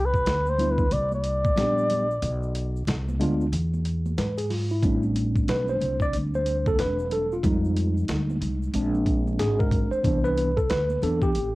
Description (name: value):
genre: hip hop, jazz-hop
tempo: 92 BPM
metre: 4/4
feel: swing 62% on 16ths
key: unclear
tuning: A4 = 441 Hz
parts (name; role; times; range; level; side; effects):
- breathy flugelhorn; melody; 0.0-2.7 s; B4 to D5; -25 LUFS; equal; none
- upright bass; bass; 0.0-11.6 s; E1 to G#2; -27 LUFS; equal; tube saturation
- dusty soul sampler-style drum kit; drums; 0.1-11.5 s; hi-hat, kick drum, snare drum; -27 LUFS; equal; cassette tape
- egg shaker and congas; percussion; 0.1-11.5 s; none; -39 LUFS; right 4 dB; none
- tine electric piano; accompaniment; 0.6-11.6 s; E3 to D5; -25 LUFS; equal; overdrive, fast stereo tremolo, cassette tape
room: small room ambience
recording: home recording on cassette, vinyl crackle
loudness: -22 LUFS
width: side -19 dB against mid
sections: 0.0-4.8 A section; 4.8-11.6 A section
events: flugelhorn solo 0.0-4.8; break 2.2-4.8; tine electric piano solo 4.8-11.6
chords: 0.0 Cmaj7sus2; 2.2 Bdim; 3.5 E; 4.8 Am11; 7.4 Fm7; 8.7 Bb9; 10.0 Cmaj9